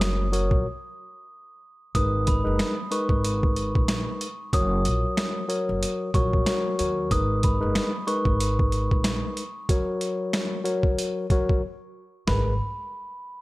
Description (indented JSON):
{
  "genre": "hip hop, boom-bap hip-hop",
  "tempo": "93 BPM",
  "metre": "4/4",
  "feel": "swing 57% on 16ths",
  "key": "G# minor",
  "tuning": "A4 = 439 Hz",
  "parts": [
    { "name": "glockenspiel with rubber mallets", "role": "melody", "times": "0.0-8.2, 12.3-12.6 s", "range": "B5 to D#6", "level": "-32 LUFS", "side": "right 1 dB", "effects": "high-pass filter, low-pass filter" },
    { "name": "mellow tine electric piano", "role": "accompaniment", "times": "0.0-12.5 s", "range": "F#3 to C#5", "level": "-27 LUFS", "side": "left 1 dB", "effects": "high-pass filter, low-pass filter" },
    { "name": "upright bass", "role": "bass", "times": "0.0-12.6 s", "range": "F#1 to D#2", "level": "-27 LUFS", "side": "equal", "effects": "none" },
    { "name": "boom bap sampler-style drum kit", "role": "drums", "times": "0.0-12.4 s", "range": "hi-hat, kick drum, snare drum, toms", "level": "-25 LUFS", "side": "equal", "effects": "none" }
  ],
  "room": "light reverb",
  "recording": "none",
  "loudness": "-22 LUFS",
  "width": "side -20 dB against mid",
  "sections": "0.0-2.0 A section; 2.0-12.3 B section; 12.3-13.4 C section",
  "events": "break 0.7-2.0, 11.6-12.3",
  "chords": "0.0 F#; 2.0 G#madd9; 4.5 F#; 7.1 G#madd9; 9.7 F#; 12.3 G#madd9"
}